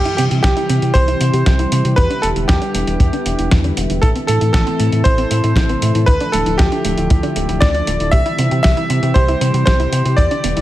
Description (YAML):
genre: italo disco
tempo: 117 BPM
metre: 4/4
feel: straight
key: C major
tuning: A4 = 440 Hz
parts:
  - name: bright electric grand piano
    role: melody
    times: 0.0-10.6 s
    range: G4 to E5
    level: -19 LUFS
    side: right 1 dB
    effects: ping-pong delay
  - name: lush unison pad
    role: sustained chords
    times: 0.0-10.6 s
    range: C3 to A4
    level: -22 LUFS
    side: left 1 dB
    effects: chorus
  - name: analog pluck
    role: arpeggios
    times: 0.0-10.6 s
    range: A3 to G4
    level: -26 LUFS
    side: right 2 dB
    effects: chorus, vintage 12-bit sampler grit, tape echo
  - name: round analog bass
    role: bass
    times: 0.0-10.6 s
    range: D1 to C3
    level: -18 LUFS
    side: equal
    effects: none
  - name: dusty soul sampler-style drum kit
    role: drums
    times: 0.1-10.6 s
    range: hi-hat, snare drum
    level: -23 LUFS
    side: equal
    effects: none
  - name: kick drum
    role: drums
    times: 0.4-10.3 s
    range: none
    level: -14 LUFS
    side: equal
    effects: none
room: light reverb, digital ambience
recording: none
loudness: -13 LUFS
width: side -14 dB against mid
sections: 0.0-10.6 A section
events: filter sweep on synth arpeggio sound 0.0-10.6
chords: 0.0 C; 2.0 Em7; 4.0 Am; 6.1 Dmadd9; 8.1 C